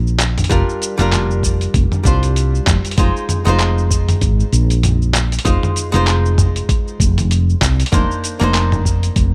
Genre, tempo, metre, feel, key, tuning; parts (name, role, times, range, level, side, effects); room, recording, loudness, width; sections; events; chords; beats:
sunset chillout; 97 BPM; 4/4; swing 57% on 16ths; F dorian; A4 = 440 Hz
archtop guitar, miked and amplified; accompaniment; 0.0-9.3 s; G3 to C5; -24 LUFS; equal; tape echo
woody fretless electric bass; bass; 0.0-9.3 s; F1 to C2; -18 LUFS; equal
dusty soul sampler-style drum kit; drums; 0.1-9.3 s; handclaps, hi-hat, shaker, toms; -22 LUFS; equal; overdrive
electronic kick drum; drums; 0.5-9.3 s; -20 LUFS; equal; overdrive
little or no reverb; -16 LUFS; mono
0.0-9.3 A section
0.0 Cm9; 0.5 Gm7/F; 3.0 Fm7; 7.9 Cm9/F
| 0.51 1.12 1.74 2.36 | 2.98 3.60 4.22 4.84 | 5.46 6.07 6.69 7.31 | 7.93 8.55 9.17